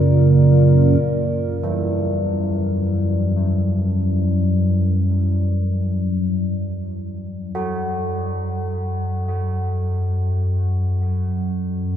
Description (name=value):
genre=dark ambient drone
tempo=free time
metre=none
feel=none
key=unclear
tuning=A4 = 440 Hz
part: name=dark analog pad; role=sustained chords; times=0.0-1.0 s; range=A#3 to A#4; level=-26 LUFS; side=left 1 dB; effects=lush chorus
part: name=analog drone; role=drone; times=0.0-12.0 s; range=F#2 to C#3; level=-18 LUFS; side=equal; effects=lush chorus
part: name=quartz singing bowl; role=texture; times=0.0-1.0 s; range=D5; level=-31 LUFS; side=left 4 dB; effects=none
part: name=old church bells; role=arpeggios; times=1.6-12.0 s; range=E3 to F#4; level=-27 LUFS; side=right 1 dB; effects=tape echo
room=wet huge ambient reverb, RT60 7.9 s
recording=dark, warm production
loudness=-17 LUFS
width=side -10 dB against mid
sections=0.0-1.0 A section; 1.0-12.0 B section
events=fade-in on synth drone 1.0-12.0; fade-in on church bells 1.0-12.0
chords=0.0 A#; 1.0 Esus2